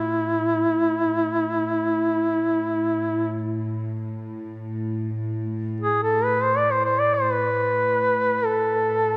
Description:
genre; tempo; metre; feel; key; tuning
caucasian folk, Caucasian lament; free time; none; none; A minor; A4 = 440 Hz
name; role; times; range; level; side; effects
warm duduk; melody; 0.0-9.2 s; E4 to D5; -23 LUFS; equal; none
warm studio string section; drone; 0.0-9.2 s; A2; -32 LUFS; equal; none
room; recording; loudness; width
wet church reverb, RT60 3.3 s; none; -23 LUFS; mono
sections
0.0-9.2 A section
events
none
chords
none

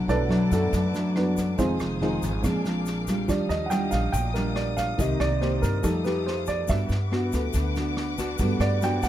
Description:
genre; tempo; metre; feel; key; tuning
bossa nova; 141 BPM; 4/4; straight; unclear; A4 = 440 Hz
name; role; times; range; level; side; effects
nylon-string guitar; accompaniment; 0.0-9.1 s; F2 to G4; -27 LUFS; left 1 dB; none
warm studio string section; sustained chords; 0.0-9.1 s; D4 to Eb6; -36 LUFS; left 4 dB; none
upright bass; bass; 0.0-9.1 s; F1 to G2; -29 LUFS; equal; none
dark baby grand piano; accompaniment; 0.1-9.1 s; Eb3 to G5; -28 LUFS; right 2 dB; none
vintage brush drum kit; drums; 0.1-9.1 s; kick drum, rim click, snare drum; -33 LUFS; equal; none
tube shaker; percussion; 0.1-9.1 s; none; -42 LUFS; left 8 dB; none
room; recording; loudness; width
little or no reverb; close, detailed microphones; -23 LUFS; side -12 dB against mid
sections
0.0-9.1 A section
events
grand piano solo 0.0-9.1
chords
0.0 Bm7; 1.6 Fm7; 2.4 Bb7; 3.3 Ebmaj9; 5.0 Cm7; 5.8 F9; 6.7 Gmaj7

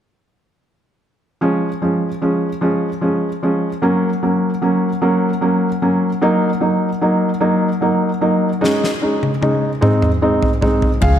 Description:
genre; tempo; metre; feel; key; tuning
six-eight pop ballad; 50 BPM (dotted quarters); 6/8; straight; Db major; A4 = 440 Hz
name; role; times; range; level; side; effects
felt-muted upright piano; accompaniment; 1.4-11.2 s; F3 to F5; -15 LUFS; equal; none
huge arena drum kit; drums; 8.6-11.2 s; crash cymbal, kick drum, snare drum, toms; -17 LUFS; equal; none
upright bass; bass; 11.0-11.2 s; Db2; -14 LUFS; equal; none
room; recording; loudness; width
moderate concert hall reverb, RT60 2.0 s; none; -15 LUFS; side -10 dB against mid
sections
1.4-11.0 A section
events
drum fill 8.6-11.0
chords
1.4 Db; 3.8 Gb; 6.2 Ebm/Gb; 8.6 Absus4; 9.8 Ab

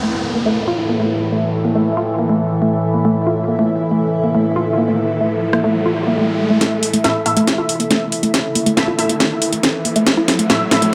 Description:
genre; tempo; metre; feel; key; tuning
driving peak-time techno; 139 BPM; 4/4; straight; unclear; A4 = 440 Hz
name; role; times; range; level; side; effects
woody wave-folded pluck; riff; 0.0-10.9 s; A3 to F4; -21 LUFS; equal; chorus, tube saturation, cassette tape, dub echo
overtone-sweeping drone; drone; 0.4-6.7 s; A2 to E3; -24 LUFS; equal; chorus, built-in reverb
downlifter and riser; sound effects; 0.0-10.9 s; none; -28 LUFS; equal; none
airy breathy pad; texture; 0.0-10.9 s; E4 to E5; -24 LUFS; equal; chorus
techno drum kit; drums; 5.5-10.9 s; hi-hat, rim click, snare drum; -20 LUFS; equal; tape echo
rave stab; stabs; 7.0-10.8 s; A3 to E5; -23 LUFS; equal; chorus, built-in reverb, phaser, cassette tape, analog delay
room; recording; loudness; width
moderate echo chamber reverb, RT60 1.8 s; echo-heavy mix; -17 LUFS; mono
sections
0.0-6.6 A section; 6.6-10.9 B section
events
riser 4.3-6.6, 6.6-10.9; build-up 6.6-10.9; drum fill 6.6-10.9; filter sweep on synth stab 6.6-10.9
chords
0.0 A5

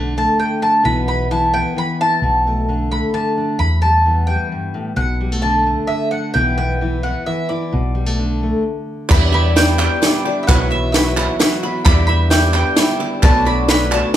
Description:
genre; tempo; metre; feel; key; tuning
indie folk with a building arrangement; 131 BPM; 3/4; straight; unclear; A4 = 439 Hz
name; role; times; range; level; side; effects
mandolin; melody; 0.0-14.1 s; D5 to B5; -19 LUFS; equal; none
fingerpicked steel-string acoustic guitar; accompaniment; 0.0-10.0 s; E2 to E4; -22 LUFS; left 1 dB; none
hollow-body short-scale fingered electric bass; bass; 0.0-14.0 s; B1 to E2; -19 LUFS; equal; none
picked twelve-string acoustic guitar; accompaniment; 9.1-14.1 s; B2 to G4; -23 LUFS; left 4 dB; none
warm upright piano; accompaniment; 9.1-14.2 s; B1 to E5; -27 LUFS; right 5 dB; none
mellow tonewheel organ; sustained chords; 9.1-14.2 s; D3 to F#4; -26 LUFS; equal; overdrive, chorus vibrato, slow rotary speaker
qanun; arpeggios; 9.1-14.2 s; B4 to D6; -24 LUFS; right 4 dB; none
compact cocktail drum kit; drums; 9.1-14.2 s; crash cymbal, kick drum, ride cymbal, snare drum; -15 LUFS; equal; none
group handclap; percussion; 9.1-14.0 s; none; -24 LUFS; right 3 dB; none
room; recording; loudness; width
moderate large studio reverb, RT60 0.8 s; band playing live in one room; -14 LUFS; side -11 dB against mid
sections
0.0-9.1 A section; 9.1-14.2 B section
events
stop 8.6-9.1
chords
0.0 Bm7; 0.8 Bsus4; 2.2 Bm7; 3.6 Em; 5.0 Bm7; 6.4 Bsus4; 7.7 Bm7; 9.1 Em7; 10.5 Bsus4; 11.9 Em7; 13.2 Bm7

